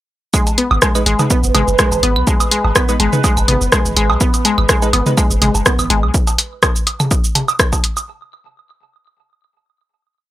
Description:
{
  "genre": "minimal techno",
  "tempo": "124 BPM",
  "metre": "4/4",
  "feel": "swing 54% on 16ths",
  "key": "G# minor",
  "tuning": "A4 = 443 Hz",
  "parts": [
    { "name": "resonant blip pluck", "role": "riff", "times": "0.3-5.9 s", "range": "G#3 to B3", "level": "-19 LUFS", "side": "left 1 dB", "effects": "chorus, sidechain pumping, analog delay" },
    { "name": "electronic kick drum", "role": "drums", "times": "0.3-7.8 s", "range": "none", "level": "-17 LUFS", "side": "equal", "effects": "none" },
    { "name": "punchy analog drum machine", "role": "drums", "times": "0.3-8.1 s", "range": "hi-hat, rim click, shaker", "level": "-16 LUFS", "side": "equal", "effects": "none" },
    { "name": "electronic claves, woodblock and toms", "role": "percussion", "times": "0.3-8.1 s", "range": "none", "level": "-20 LUFS", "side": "right 2 dB", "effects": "overdrive, tape echo" },
    { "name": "bubbling stepped-filter texture", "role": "texture", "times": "1.5-6.2 s", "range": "B4", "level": "-25 LUFS", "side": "right 4 dB", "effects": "chorus, built-in reverb, sidechain pumping" },
    { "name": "punchy sub bass", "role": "bass", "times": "0.7-6.1 s", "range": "F#1 to B1", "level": "-17 LUFS", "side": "equal", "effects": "sidechain pumping" },
    { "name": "wavetable chord stab", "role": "stabs", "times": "1.0-5.1 s", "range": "G#3 to B4", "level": "-24 LUFS", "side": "right 1 dB", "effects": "tape echo" }
  ],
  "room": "light reverb",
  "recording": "dry, gritty hardware recording, transformer saturation",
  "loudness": "-12 LUFS",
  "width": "side -15 dB against mid",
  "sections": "0.3-8.1 drop",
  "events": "drop 0.3-8.1",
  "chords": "0.3 G#m",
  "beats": "| 0.34 0.82 1.30 1.79 | 2.27 2.76 3.24 3.72 | 4.21 4.69 5.17 5.66 | 6.14 6.63 7.11 7.59"
}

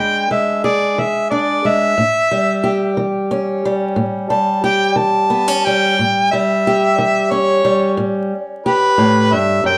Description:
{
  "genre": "acoustic country blues, solo or duo",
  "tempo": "60 BPM (dotted quarters)",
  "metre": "12/8",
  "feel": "straight",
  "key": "unclear",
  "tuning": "A4 = 440 Hz",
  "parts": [
    { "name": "mellow harmonica", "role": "melody", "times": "0.0-9.8 s", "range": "B4 to A5", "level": "-18 LUFS", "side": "equal", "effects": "none" },
    { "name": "fingerpicked acoustic archtop guitar", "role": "accompaniment", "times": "0.0-9.8 s", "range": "E2 to G#4", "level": "-19 LUFS", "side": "equal", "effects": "none" }
  ],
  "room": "moderate studio reverb, RT60 0.7 s",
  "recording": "vinyl crackle",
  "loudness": "-16 LUFS",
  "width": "mono",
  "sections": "0.0-9.8 A section",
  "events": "harmonica solo 0.0-9.8",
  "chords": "0.0 E7; 2.0 A7",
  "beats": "0.98 | 1.98 2.98 3.98 4.98 | 5.98 6.98 7.99 8.99"
}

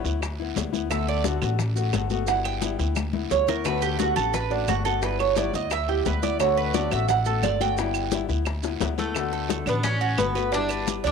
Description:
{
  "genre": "latin, Cuban son and guajira",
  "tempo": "175 BPM",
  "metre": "4/4",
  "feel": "straight",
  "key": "D major",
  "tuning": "A4 = 441 Hz",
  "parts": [
    { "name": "nylon-string guitar", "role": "accompaniment", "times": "0.0-11.1 s", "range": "D3 to F#4", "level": "-29 LUFS", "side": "left 10 dB", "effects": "none" },
    { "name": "upright bass", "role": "bass", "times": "0.0-11.1 s", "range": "G1 to D2", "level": "-28 LUFS", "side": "equal", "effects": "none" },
    { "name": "guiro", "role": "percussion", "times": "0.0-11.1 s", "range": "none", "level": "-39 LUFS", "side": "right 11 dB", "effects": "none" },
    { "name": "bongos", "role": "percussion", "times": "0.1-11.1 s", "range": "none", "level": "-34 LUFS", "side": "left 11 dB", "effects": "none" },
    { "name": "congas", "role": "percussion", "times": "0.1-11.1 s", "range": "none", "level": "-32 LUFS", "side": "left 11 dB", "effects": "none" },
    { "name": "maracas", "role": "percussion", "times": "0.1-11.1 s", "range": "none", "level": "-38 LUFS", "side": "right 12 dB", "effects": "none" },
    { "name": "claves", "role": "percussion", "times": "0.2-10.9 s", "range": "none", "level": "-36 LUFS", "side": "right 11 dB", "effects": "none" },
    { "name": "Cuban tres", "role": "arpeggios", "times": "0.9-11.1 s", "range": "D4 to G5", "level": "-26 LUFS", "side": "right 11 dB", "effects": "none" },
    { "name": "Cuban tres", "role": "melody", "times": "9.0-11.1 s", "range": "A3 to D4", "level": "-27 LUFS", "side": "left 1 dB", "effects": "none" }
  ],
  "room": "moderate spring reverb, RT60 1.7 s, small room ambience",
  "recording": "1960s-style stereo with parts hard left and right",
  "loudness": "-22 LUFS",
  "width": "side -6 dB against mid",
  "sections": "0.0-9.2 A section; 9.2-11.1 B section",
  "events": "Cuban tres solo 0.0-9.2; drum fill 3.0-3.7, 8.6-9.2",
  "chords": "0.0 G6; 0.9 D6; 2.3 G6; 3.7 D6; 5.0 G6; 6.4 D6; 7.8 G6; 9.2 D6; 10.5 G6",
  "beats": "0.22 0.57 | 0.91 1.25 1.60 1.94 | 2.28 2.63 2.97 3.31 | 3.66 4.00 4.34 4.69 | 5.03 5.37 5.72 6.06 | 6.40 6.75 7.09 7.43 | 7.78 8.12 8.47 8.81 | 9.15 9.50 9.84 10.19 | 10.53 10.87"
}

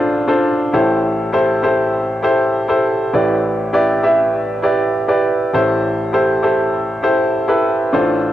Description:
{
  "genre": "pop",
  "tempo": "100 BPM",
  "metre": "4/4",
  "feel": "straight",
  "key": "A minor",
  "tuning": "A4 = 440 Hz",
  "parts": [
    { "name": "clear baby grand piano", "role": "solo", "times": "0.0-8.3 s", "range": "A1 to E5", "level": "-14 LUFS", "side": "equal", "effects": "cassette tape, tape echo" }
  ],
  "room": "wet spring reverb, RT60 1.7 s, small room ambience",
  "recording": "home recording on cassette",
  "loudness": "-14 LUFS",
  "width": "side -12 dB against mid",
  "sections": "0.0-8.3 A section",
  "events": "none",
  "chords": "0.0 Dm7/A; 0.7 Am7; 3.1 Em7/A; 5.5 Am7",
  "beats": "0.14 | 0.73 1.33 1.94 2.54 | 3.13 3.73 4.33 4.93 | 5.54 6.13 6.74 7.33 | 7.93"
}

